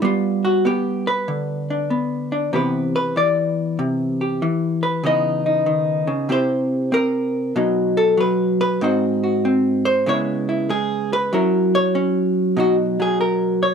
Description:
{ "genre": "solo jazz", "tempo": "96 BPM", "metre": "4/4", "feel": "swing 66% on 8ths", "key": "unclear", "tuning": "A4 = 440 Hz", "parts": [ { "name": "vintage hollow-body jazz guitar", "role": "solo", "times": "0.0-13.7 s", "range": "G#2 to D#5", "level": "-17 LUFS", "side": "equal", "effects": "none" } ], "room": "light reverb", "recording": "minimal, uncompressed stereo recording", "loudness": "-17 LUFS", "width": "side -6 dB against mid", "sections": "0.0-12.6 A section; 12.6-13.7 B section", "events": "hollow-body jazz guitar solo 0.0-12.6", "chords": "0.0 G; 2.5 Cmaj9; 5.0 C#m9; 6.3 C7; 7.5 B; 8.8 G#7; 10.1 C#m7; 11.3 F#5; 12.6 B" }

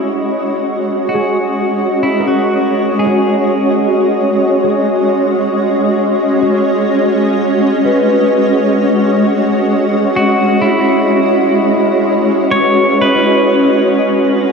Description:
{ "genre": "ambient", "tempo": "63 BPM", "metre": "3/4", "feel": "straight", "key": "unclear", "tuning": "A4 = 440 Hz", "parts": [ { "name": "pedal steel guitar", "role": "melody", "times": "0.0-4.4, 10.2-14.5 s", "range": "E4 to C#5", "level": "-18 LUFS", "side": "equal", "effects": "ping-pong delay" }, { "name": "shimmering ambient pad", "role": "sustained chords", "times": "0.0-14.5 s", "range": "G#3 to D#5", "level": "-12 LUFS", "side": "equal", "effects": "chorus, built-in reverb" }, { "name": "concert harp", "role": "arpeggios", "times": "0.0-14.5 s", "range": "E4 to D#5", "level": "-22 LUFS", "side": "left 2 dB", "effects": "ping-pong delay" } ], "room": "wet huge ambient reverb, RT60 8.4 s", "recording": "dark, warm production", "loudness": "-10 LUFS", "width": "side -5 dB against mid", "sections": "0.0-14.5 A section", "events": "fade-in on pedal steel guitar 0.0-14.5; fade-out on harp 0.0-14.5", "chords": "0.0 C#5; 4.9 Badd9; 10.6 C#m7" }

